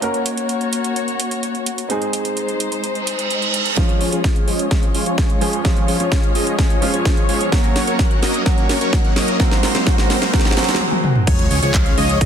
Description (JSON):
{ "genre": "EDM, festival progressive house", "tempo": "128 BPM", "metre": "4/4", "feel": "straight", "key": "Db major", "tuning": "A4 = 440 Hz", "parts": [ { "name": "warm baby grand piano", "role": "accompaniment", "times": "0.0-11.3 s", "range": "F3 to Bb4", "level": "-25 LUFS", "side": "right 2 dB", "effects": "sidechain pumping, dub echo" }, { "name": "dark studio string section", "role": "sustained chords", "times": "0.0-12.3 s", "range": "Ab3 to Db5", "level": "-25 LUFS", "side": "left 3 dB", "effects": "sidechain pumping" }, { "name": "house drum kit", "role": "drums", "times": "0.0-12.3 s", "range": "crash cymbal, handclaps, hi-hat, snare drum, toms", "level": "-22 LUFS", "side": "right 1 dB", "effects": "none" }, { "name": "reverse cymbal, riser and sub drop", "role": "sound effects", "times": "3.0-12.3 s", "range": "none", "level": "-26 LUFS", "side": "right 2 dB", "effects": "none" }, { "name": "big supersaw lead", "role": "riff", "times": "3.8-12.3 s", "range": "F3 to Gb5", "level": "-21 LUFS", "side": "equal", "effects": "sidechain pumping, low-pass filter, dub echo" }, { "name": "electronic kick drum", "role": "drums", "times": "3.8-12.3 s", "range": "none", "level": "-17 LUFS", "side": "equal", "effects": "overdrive" }, { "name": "wide unison lead", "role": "arpeggios", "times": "11.3-12.3 s", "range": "Db5 to F5", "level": "-23 LUFS", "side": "right 1 dB", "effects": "sidechain pumping, dub echo" }, { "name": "fat analog bass", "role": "bass", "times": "11.3-12.3 s", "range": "Db2", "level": "-21 LUFS", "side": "equal", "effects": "sidechain pumping" } ], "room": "light reverb, digital ambience", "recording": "dense, heavily limited modern master", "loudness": "-15 LUFS", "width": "side -8 dB against mid", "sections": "0.0-3.8 A section; 3.8-11.3 B section", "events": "reverse cymbal 3.0-3.8; build-up 3.8-11.3; drum fill 3.8-10.8, 10.8-11.3; filter sweep on supersaw synth 3.8-11.3; impact 11.3-12.3", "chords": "0.0 Gb; 1.9 Ab; 3.8 Db; 7.5 Gb; 9.4 Ab; 11.3 Db" }